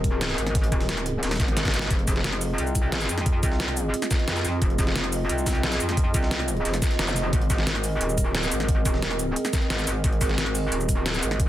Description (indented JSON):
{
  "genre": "dark technical drum and bass",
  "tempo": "177 BPM",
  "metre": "4/4",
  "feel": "straight",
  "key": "F minor",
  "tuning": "A4 = 441 Hz",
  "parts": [
    { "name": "dark analog pad", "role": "sustained chords", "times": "0.0-11.5 s", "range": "C4 to Eb5", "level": "-30 LUFS", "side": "right 1 dB", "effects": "chorus, sidechain pumping" },
    { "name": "metallic wobble bass", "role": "bass", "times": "0.0-11.5 s", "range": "Eb1 to F2", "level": "-27 LUFS", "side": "equal", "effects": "distortion, chorus, overdrive" },
    { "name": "breakbeat sampler-style drum kit", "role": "drums", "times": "0.0-11.5 s", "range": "hi-hat, snare drum", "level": "-37 LUFS", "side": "equal", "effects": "none" },
    { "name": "dubstep drum kit", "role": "drums", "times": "0.0-11.5 s", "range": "cabasa, hi-hat, snare drum", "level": "-28 LUFS", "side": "equal", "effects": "small room ambience" },
    { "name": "electronic kick drum", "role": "drums", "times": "0.0-11.5 s", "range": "none", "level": "-24 LUFS", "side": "equal", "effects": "overdrive, small room ambience" },
    { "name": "zap", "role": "sound effects", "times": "7.1-7.2 s", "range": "none", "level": "-33 LUFS", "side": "left 1 dB", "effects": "none" }
  ],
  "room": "light reverb",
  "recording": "dense, heavily limited modern master",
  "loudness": "-22 LUFS",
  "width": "side -13 dB against mid",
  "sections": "0.0-11.5 A section",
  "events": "drum fill 1.6-1.9",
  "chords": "0.0 Abadd9; 1.9 Fm7; 7.3 Abadd9"
}